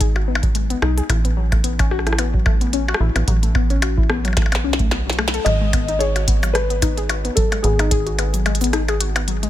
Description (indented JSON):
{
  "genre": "IDM",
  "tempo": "110 BPM",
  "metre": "4/4",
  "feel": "swing 56% on 16ths",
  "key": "G# phrygian",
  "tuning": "A4 = 440 Hz",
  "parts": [
    { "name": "warbly dusty pluck", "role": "arpeggios", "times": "0.0-9.5 s", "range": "F#3 to A4", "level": "-24 LUFS", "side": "left 6 dB", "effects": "chorus, phaser, dub echo" },
    { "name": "metallic FM bass", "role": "bass", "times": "0.0-9.5 s", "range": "G#1 to B1", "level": "-21 LUFS", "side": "right 1 dB", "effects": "none" },
    { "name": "electronic kick drum", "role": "drums", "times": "0.0-8.0 s", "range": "none", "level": "-20 LUFS", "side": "right 1 dB", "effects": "studio reverb" },
    { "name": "glitchy drum kit", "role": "drums", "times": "0.0-9.5 s", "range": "hi-hat, percussion blips, rim click, shaker, snare drum", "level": "-24 LUFS", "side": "left 1 dB", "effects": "studio reverb" },
    { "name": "felt-muted upright piano", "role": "melody", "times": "5.4-8.7 s", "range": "G#4 to D#5", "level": "-24 LUFS", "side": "left 1 dB", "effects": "dub echo" }
  ],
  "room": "little or no reverb",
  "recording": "none",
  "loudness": "-16 LUFS",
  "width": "side -13 dB against mid",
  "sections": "0.0-5.5 A section; 5.5-9.5 B section",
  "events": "drum fill 4.4-5.5; band accent 5.3",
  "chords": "0.0 G#m7; 1.1 Asus2; 5.5 G#m7",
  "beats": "0.00 0.55 | 1.09 1.64 2.19 2.73 | 3.28 3.82 4.37 4.91 | 5.46 6.00 6.55 7.09 | 7.64 8.19 8.73 9.28"
}